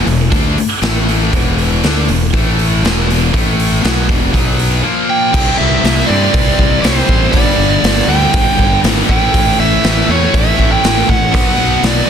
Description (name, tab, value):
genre	hard rock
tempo	120 BPM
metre	4/4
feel	straight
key	E minor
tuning	A4 = 440 Hz
part	high-gain distorted guitar	riff	0.0-12.1 s	E2 to D4	-18 LUFS	left 12 dB	distortion
part	scooped high-gain guitar	riff	0.0-12.1 s	E2 to D4	-20 LUFS	right 13 dB	distortion
part	fuzz fingered electric bass	bass	0.0-12.0 s	E1 to G2	-16 LUFS	equal	overdrive
part	raw garage drum kit	drums	0.1-12.0 s	crash cymbal, hi-hat, kick drum, snare drum	-15 LUFS	equal	none
part	biting lead guitar	melody	5.1-12.1 s	C5 to G5	-16 LUFS	right 4 dB	overdrive, analog delay
part	high-gain distorted guitar	riff	5.3-12.1 s	G2 to E4	-19 LUFS	left 1 dB	distortion
room	studio reverb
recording	dense, heavily limited modern master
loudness	-10 LUFS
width	side -8 dB against mid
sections	0.0-5.3 A section; 5.3-12.1 B section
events	none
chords	0.0 E5; 0.8 A5; 1.3 E5; 2.3 A5; 2.8 E5; 3.3 A5; 3.8 E5; 4.3 B5; 4.8 A#5; 5.3 C; 7.3 G; 9.1 A; 11.3 B